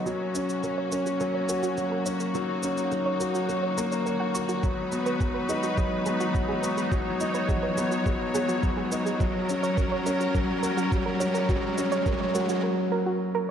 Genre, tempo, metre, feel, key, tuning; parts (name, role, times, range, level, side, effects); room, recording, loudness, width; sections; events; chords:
piano and strings electronica; 105 BPM; 4/4; straight; A4 = 440 Hz
rich studio string section; sustained chords; 0.0-12.6 s; G#3 to C#5; -32 LUFS; left 1 dB; sidechain pumping
dark grand piano; riff; 0.0-13.5 s; F#3 to C#5; -27 LUFS; left 1 dB; tape echo
riser; sound effects; 0.0-12.6 s; -37 LUFS; right 2 dB
soft round pluck; arpeggios; 0.1-13.4 s; F#4 to C#6; -33 LUFS; right 5 dB; chorus, sidechain pumping, tape echo
shaker; drums; 0.1-12.6 s; -39 LUFS; right 1 dB; high-pass filter on perc, studio reverb
electronic kick drum; drums; 4.6-12.2 s; -28 LUFS; right 1 dB; studio reverb
wet echo chamber reverb, RT60 2.3 s; dark, warm production; -24 LUFS; side -8 dB against mid
0.0-13.5 A section
build-up 0.0-13.5; riser 0.0-12.6; filter sweep on synth arpeggio sound 0.0-13.5
0.1 F#; 4.6 G#m7; 9.2 F#